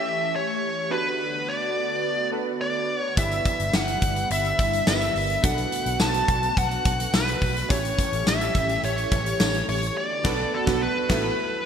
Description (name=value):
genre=1980s-style pop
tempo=106 BPM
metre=4/4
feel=straight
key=B minor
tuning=A4 = 442 Hz
part: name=bluesy overdriven lead guitar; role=melody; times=0.0-11.7 s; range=A4 to A5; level=-25 LUFS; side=equal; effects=distortion, digital delay
part: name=glassy digital keys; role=accompaniment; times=0.0-11.3 s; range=A3 to C#5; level=-31 LUFS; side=right 3 dB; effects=chorus
part: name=phased analog pad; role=sustained chords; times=0.0-11.7 s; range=D3 to A4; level=-33 LUFS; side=equal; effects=phaser, chorus
part: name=vintage muted fingered electric bass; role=bass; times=3.2-11.3 s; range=G1 to B1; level=-29 LUFS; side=equal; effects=none
part: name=big rock drum kit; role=drums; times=3.2-11.3 s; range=crash cymbal, hi-hat, kick drum, snare drum, tambourine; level=-25 LUFS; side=left 1 dB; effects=gated reverb
room=moderate lush hall reverb, RT60 1.9 s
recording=bright 1980s-style digital production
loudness=-21 LUFS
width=side -8 dB against mid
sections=0.0-11.7 A section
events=band accent 10.0-11.7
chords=0.0 A7; 0.9 Bm7; 3.2 G6; 5.4 Bm7; 7.7 A7; 10.0 Bm7; 11.1 Asus2